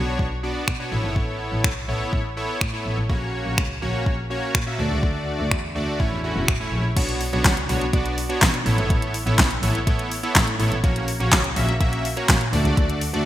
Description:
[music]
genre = dance-pop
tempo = 124 BPM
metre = 4/4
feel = straight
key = B minor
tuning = A4 = 439 Hz
[part]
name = big bright polysynth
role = accompaniment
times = 0.0-13.3 s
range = A3 to E5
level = -25 LUFS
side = equal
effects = chorus, sidechain pumping
[part]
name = clear double bass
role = bass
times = 0.0-13.2 s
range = E1 to B2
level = -25 LUFS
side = equal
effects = sidechain pumping
[part]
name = smooth R&B drum kit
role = drums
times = 0.2-13.2 s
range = crash cymbal, finger snaps, handclaps, hi-hat, kick drum, snare drum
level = -21 LUFS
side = equal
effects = gated reverb
[sound]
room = light reverb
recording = bright 1980s-style digital production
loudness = -20 LUFS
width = side -13 dB against mid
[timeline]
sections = 0.0-7.0 A section; 7.0-13.3 B section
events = none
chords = 0.0 Bmadd9; 0.9 Aadd9; 3.1 F#/A#; 4.8 D; 6.0 A; 7.0 Bmadd9; 8.7 Aadd9; 10.8 F#/A#; 12.5 D

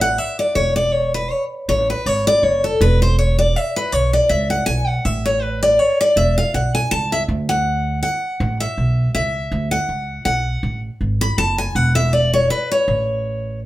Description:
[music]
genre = bluegrass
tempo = 161 BPM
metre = 3/4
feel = swing 55% on 8ths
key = A major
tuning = A4 = 440 Hz
[part]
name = picked steel-string acoustic guitar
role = accompaniment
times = 0.0-13.6 s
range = A4 to B5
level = -18 LUFS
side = left 1 dB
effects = none
[part]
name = upright bass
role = bass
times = 0.0-13.6 s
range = E1 to D2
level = -20 LUFS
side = right 1 dB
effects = none
[sound]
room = wet studio reverb, RT60 0.5 s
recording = band playing live in one room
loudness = -16 LUFS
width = side -16 dB against mid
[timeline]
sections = 0.0-13.7 A section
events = steel-string acoustic guitar solo 0.0-13.7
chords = 0.0 A5; 2.8 E5; 5.0 A; 7.3 D; 8.4 A; 9.5 D; 10.6 F#madd9; 11.8 Dmaj13/E; 12.9 A

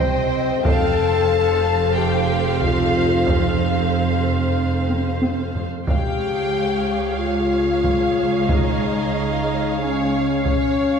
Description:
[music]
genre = cinematic, epic orchestral film score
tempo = 92 BPM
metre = 4/4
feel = straight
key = unclear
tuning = A4 = 440 Hz
[part]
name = warm symphonic violin section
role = melody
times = 0.0-11.0 s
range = C5 to A5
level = -29 LUFS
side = left 2 dB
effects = none
[part]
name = rich symphonic violin section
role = second line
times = 0.0-11.0 s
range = Eb5 to G5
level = -27 LUFS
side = right 1 dB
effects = none
[part]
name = warm symphonic viola section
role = accompaniment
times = 0.0-11.0 s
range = Ab4 to Db5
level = -29 LUFS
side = right 2 dB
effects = none
[part]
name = warm French horn section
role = sustained chords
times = 0.0-11.0 s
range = C4 to A4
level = -22 LUFS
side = left 4 dB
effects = none
[part]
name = rich symphonic cello section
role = bass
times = 0.0-11.0 s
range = C2 to F2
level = -26 LUFS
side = right 3 dB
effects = none
[part]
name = warm studio double bass section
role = bass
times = 0.0-11.0 s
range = F1 to Db2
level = -26 LUFS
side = right 4 dB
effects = none
[part]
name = solo taiko drums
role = drums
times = 0.0-11.0 s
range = none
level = -24 LUFS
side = right 1 dB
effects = none
[sound]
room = wet scoring stage reverb, RT60 2.1 s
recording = recorded in a church or concert hall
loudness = -17 LUFS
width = side -6 dB against mid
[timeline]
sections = 0.0-11.0 A section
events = drum fill 4.9-5.9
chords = 0.0 Cm; 0.6 F; 5.9 Db

